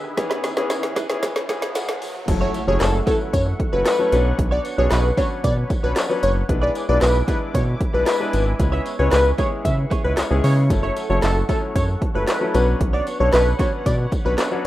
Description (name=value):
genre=dance-pop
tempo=114 BPM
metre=4/4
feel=straight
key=F# minor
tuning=A4 = 437 Hz
part: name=sweeping resonant pad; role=sustained chords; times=0.0-14.7 s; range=B2 to D6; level=-33 LUFS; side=equal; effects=chorus, sidechain pumping
part: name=direct-recorded clean electric guitar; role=riff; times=0.0-14.7 s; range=A3 to D5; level=-32 LUFS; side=right 5 dB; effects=analog chorus
part: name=riser and impact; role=sound effects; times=0.0-4.4 s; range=none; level=-33 LUFS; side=equal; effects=none
part: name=bright concert grand piano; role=accompaniment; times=0.2-14.7 s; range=E3 to G#5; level=-26 LUFS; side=left 3 dB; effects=sidechain pumping
part: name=deep house drum kit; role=drums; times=0.2-14.5 s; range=crash cymbal, handclaps, hi-hat, kick drum, snare drum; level=-23 LUFS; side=equal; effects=none
part: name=tambourine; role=percussion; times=0.2-14.5 s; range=none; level=-39 LUFS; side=left 2 dB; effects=none
part: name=round analog bass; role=bass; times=2.3-14.4 s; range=F#1 to C#3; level=-20 LUFS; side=equal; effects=sidechain pumping
part: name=plucky unison lead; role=melody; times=2.4-14.3 s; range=A4 to E5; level=-22 LUFS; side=equal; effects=sidechain pumping
room=little or no reverb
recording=rough home demo mix, high-pass filter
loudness=-17 LUFS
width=side -15 dB against mid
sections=0.0-2.3 A section; 2.3-14.7 B section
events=build-up 0.0-2.3; drum fill 0.0-2.3; riser 0.0-2.3; grand piano fill 1.2-2.3; drop 2.3-14.7; impact 2.3-4.4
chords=0.2 C#m7; 2.3 F#m7; 4.1 Bmadd9; 6.5 E7/B; 8.6 C#m7; 10.7 F#m7; 12.5 Bmadd9